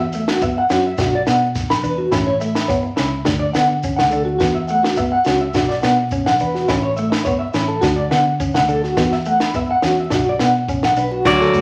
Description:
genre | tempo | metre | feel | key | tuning
highlife guitar band | 105 BPM | 4/4 | straight | unclear | A4 = 439 Hz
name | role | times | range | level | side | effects
clean electric guitar | accompaniment | 0.0-11.6 s | A3 to D4 | -26 LUFS | equal | vibrato effect
electric guitar at the edge of break-up | arpeggios | 0.0-11.5 s | E4 to B5 | -21 LUFS | equal | tremolo
fingered electric bass | bass | 0.0-11.6 s | A1 to D3 | -27 LUFS | equal | none
shekere | percussion | 0.1-11.6 s | none | -34 LUFS | equal | none
compact cocktail drum kit | drums | 0.3-11.5 s | crash cymbal, kick drum, snare drum | -25 LUFS | equal | none
electric guitar at the edge of break-up | melody | 11.3-11.6 s | F#4 to D5 | -17 LUFS | equal | none
mellow trombone | second line | 11.3-11.6 s | F#3 | -20 LUFS | equal | none
room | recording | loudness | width
wet large studio reverb, RT60 0.8 s | vinyl crackle | -18 LUFS | mono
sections
0.0-11.3 A section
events
none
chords
0.0 Esus2; 1.0 Bm; 2.1 A; 3.3 D; 4.4 Esus2; 5.6 Bm; 6.7 A; 7.8 D; 9.0 Esus2; 10.1 Bm

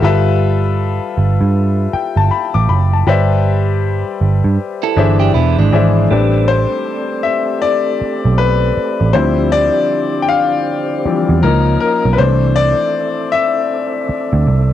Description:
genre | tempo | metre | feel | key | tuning
R&B | 79 BPM | 4/4 | swing 62% on 16ths | A minor from 6.1 s | A4 = 442 Hz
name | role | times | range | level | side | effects
clear baby grand piano | accompaniment | 0.0-14.7 s | E3 to D6 | -16 LUFS | left 6 dB | cassette tape
vintage muted picked electric bass | bass | 0.0-14.7 s | E1 to G2 | -13 LUFS | right 2 dB | none
clean electric guitar | second line | 4.8-6.1 s | G#3 to A4 | -20 LUFS | right 11 dB | phaser, cassette tape, analog delay
percussive tonewheel organ | sustained chords | 6.1-14.7 s | D3 to E#5 | -22 LUFS | right 2 dB | fast rotary speaker, overdrive, chorus vibrato, cassette tape
room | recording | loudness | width
light reverb | home recording on cassette | -12 LUFS | side -11 dB against mid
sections
0.0-6.1 A section; 6.1-14.7 B section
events
grand piano solo 6.1-14.7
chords
0.0 G13; 3.1 Cmaj9/G; 5.3 E7b13; 6.1 Am11; 9.1 Dm11; 11.4 C#69; 12.2 C69

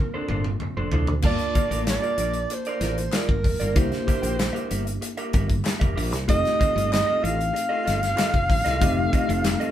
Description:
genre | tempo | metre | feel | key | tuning
polished 1980s jazz-funk pop | 95 BPM | 4/4 | straight | unclear | A4 = 440 Hz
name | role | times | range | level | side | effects
breathy alto saxophone | melody | 0.0-9.7 s | Bb4 to F5 | -26 LUFS | right 1 dB | none
mellow tine electric piano | accompaniment | 0.0-9.7 s | A3 to A5 | -30 LUFS | left 2 dB | medium stereo tremolo
electric guitar through a small old amp | riff | 0.1-9.7 s | D4 to G5 | -31 LUFS | right 1 dB | none
woody fretless electric bass | bass | 0.3-9.5 s | F1 to D2 | -28 LUFS | equal | none
modern studio drum kit | drums | 0.3-9.7 s | crash cymbal, hi-hat, kick drum, snare drum, toms | -25 LUFS | equal | none
group handclap | percussion | 1.9-9.6 s | none | -37 LUFS | left 4 dB | none
room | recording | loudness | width
moderate studio reverb, RT60 0.5 s | band playing live in one room | -21 LUFS | side -11 dB against mid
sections
0.0-1.2 A section; 1.2-9.7 B section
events
drum fill 0.0-1.2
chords
0.0 Bbmaj9; 1.2 Gm7; 3.8 C7; 6.3 F7

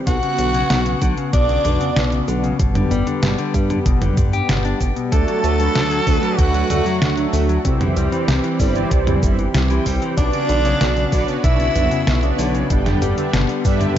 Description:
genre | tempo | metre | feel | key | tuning
synthwave | 95 BPM | 4/4 | straight | unclear | A4 = 440 Hz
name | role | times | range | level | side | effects
warm analog pad | sustained chords | 0.0-14.0 s | D3 to G4 | -25 LUFS | equal | chorus, sidechain pumping
raspy tenor saxophone | melody | 0.1-12.3 s | D4 to A4 | -23 LUFS | right 1 dB | digital delay
airy dreamy lead | second line | 0.1-12.3 s | D5 to A5 | -27 LUFS | right 1 dB | chorus, digital delay
clean electric guitar | arpeggios | 0.1-14.0 s | B2 to G4 | -24 LUFS | left 5 dB | digital delay
chorused synth bass | bass | 0.1-13.9 s | G1 to G2 | -20 LUFS | equal | none
detuned 8-bit digital drum machine | drums | 0.1-13.9 s | hi-hat, shaker, snare drum, toms | -23 LUFS | equal | overdrive
electronic kick drum | drums | 0.1-13.8 s | none | -19 LUFS | equal | none
mellow synth brass | stabs | 5.1-14.0 s | A3 to G5 | -24 LUFS | right 4 dB | chorus, digital delay
room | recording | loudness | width
light reverb, digital ambience | nothing above 7.7 kHz | -15 LUFS | side -10 dB against mid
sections
0.0-14.0 A section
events
none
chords
0.1 Bmadd9; 2.6 G; 5.1 D; 7.6 C; 10.2 Bmadd9; 12.7 G

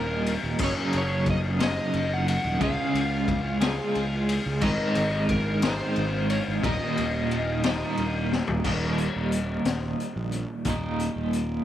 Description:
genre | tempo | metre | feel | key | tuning
psychedelic rock | 60 BPM (dotted quarters) | 6/8 | straight | unclear | A4 = 440 Hz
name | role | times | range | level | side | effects
overdriven slide guitar | melody | 0.0-8.3 s | Bb4 to Gb5 | -32 LUFS | equal | tape echo
electric guitar at the edge of break-up | riff | 0.0-11.6 s | Eb2 to Ab4 | -27 LUFS | right 1 dB | tremolo, double-tracked left and right
fuzz fingered electric bass | bass | 0.0-11.6 s | Eb1 to Db2 | -31 LUFS | right 1 dB | overdrive
raw garage drum kit | drums | 0.3-11.5 s | crash cymbal, hi-hat, kick drum, ride cymbal, snare drum, toms | -29 LUFS | left 3 dB | none
room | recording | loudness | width
light reverb, small room ambience | 1960s-style stereo | -23 LUFS | side -11 dB against mid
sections
0.0-8.6 A section; 8.6-11.6 B section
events
drum fill 8.3-8.6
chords
0.0 Eb; 0.6 Gb6; 2.6 Db; 4.6 Ab; 6.6 Eb

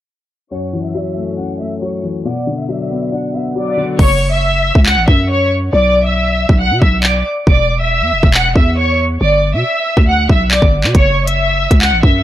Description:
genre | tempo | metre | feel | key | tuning
hip hop, drill | 138 BPM | 4/4 | half-time | F# minor | A4 = 440 Hz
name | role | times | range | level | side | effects
rich studio violin section | melody | 0.5-12.2 s | C#5 to F#6 | -16 LUFS | equal | low-pass filter, analog delay
gliding portamento lead | second line | 0.5-3.5 s | C#5 to F#5 | -30 LUFS | right 2 dB | chorus, phaser, analog delay
clear concert grand piano | accompaniment | 0.5-4.0 s | F#2 to D4 | -19 LUFS | left 3 dB | low-pass filter
growling 808-style bass | bass | 4.0-12.2 s | E1 to B2 | -15 LUFS | equal | none
drill drum kit | drums | 4.0-12.1 s | crash cymbal, handclaps, hi-hat, kick drum | -12 LUFS | equal | none
room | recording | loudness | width
little or no reverb | dry, gritty hardware recording, low-pass filter | -11 LUFS | side -13 dB against mid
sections
0.5-4.0 A section; 4.0-12.2 B section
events
filter sweep 0.5-4.0; hi-hats muted 4.0-10.9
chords
0.5 F#m7; 2.3 Bm; 4.0 F#7(no3); 5.7 Bm; 7.5 Dmaj9/E; 9.2 Gmaj7; 10.9 F#7(no3)

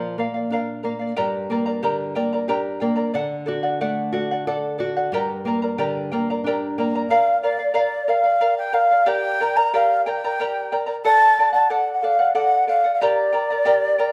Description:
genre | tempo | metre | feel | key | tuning
andean folk | 61 BPM (dotted quarters) | 6/8 | straight | unclear | A4 = 438 Hz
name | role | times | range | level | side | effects
charango | accompaniment | 0.0-14.1 s | G4 to Bb5 | -25 LUFS | equal | none
nylon-string guitar | accompaniment | 0.0-7.1 s | G2 to A4 | -28 LUFS | equal | none
mellow large quena | melody | 7.1-14.1 s | D5 to Bb5 | -20 LUFS | equal | none
room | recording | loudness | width
moderate large studio reverb, RT60 1.2 s | band playing live in one room | -21 LUFS | mono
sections
0.0-7.1 A section; 7.1-14.1 B section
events
none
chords
0.0 Bb; 1.2 Gm; 3.1 D; 5.1 Gm; 7.1 Bb; 9.1 Gm; 11.0 D; 13.0 Gm

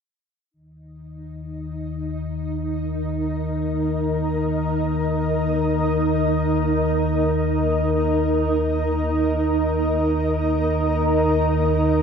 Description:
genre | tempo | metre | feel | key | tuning
dark ambient drone | free time | none | none | unclear | A4 = 441 Hz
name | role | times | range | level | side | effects
granular cloud pad | sustained chords | 1.5-12.0 s | Eb4 to Eb5 | -21 LUFS | right 1 dB | built-in reverb
deep rumbling drone | drone | 0.9-12.0 s | Eb2 to Eb3 | -24 LUFS | left 1 dB | built-in reverb, phaser
room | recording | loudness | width
wet cathedral reverb, RT60 7.3 s | dark, warm production | -19 LUFS | side -6 dB against mid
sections
0.5-12.0 A section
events
none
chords
0.5 Eb5

